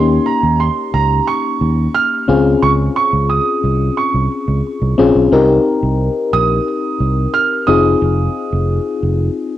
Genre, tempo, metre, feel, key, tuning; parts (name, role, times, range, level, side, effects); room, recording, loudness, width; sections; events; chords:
1980s-style pop; 89 BPM; 4/4; straight; A4 = 442 Hz
clear concert grand piano; melody; 0.0-9.6 s; Bb5 to F6; -18 LUFS; right 6 dB; cassette tape
FM electric piano with auto-pan; accompaniment; 0.0-9.6 s; Bb3 to Bb4; -16 LUFS; left 4 dB; cassette tape
fingered electric bass; bass; 0.0-9.3 s; F1 to Eb2; -16 LUFS; right 1 dB
moderate spring reverb, RT60 1.4 s, studio ambience; home recording on cassette; -12 LUFS; side -13 dB against mid
0.0-9.6 A section
break 9.4
0.0 Eb7; 2.3 Dbmaj7; 5.3 Cm7; 7.7 Fm7